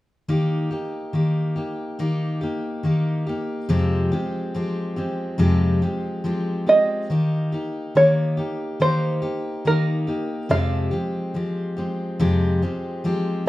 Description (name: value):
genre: acoustic folk duo or small band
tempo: 70 BPM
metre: 4/4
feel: straight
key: Eb major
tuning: A4 = 441 Hz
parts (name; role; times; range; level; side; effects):
- picked steel-string acoustic guitar; accompaniment; 0.3-13.5 s; F2 to G4; -21 LUFS; left 1 dB; none
- open-back banjo; melody; 6.7-12.2 s; Bb4 to F5; -19 LUFS; right 1 dB; none
room: moderate large studio reverb, RT60 1.1 s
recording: band playing live in one room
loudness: -20 LUFS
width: side -16 dB against mid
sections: 0.3-7.1 A section; 7.1-13.5 B section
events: none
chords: 0.3 Eb; 3.7 Fmadd9; 7.1 Eb; 10.5 Fmadd9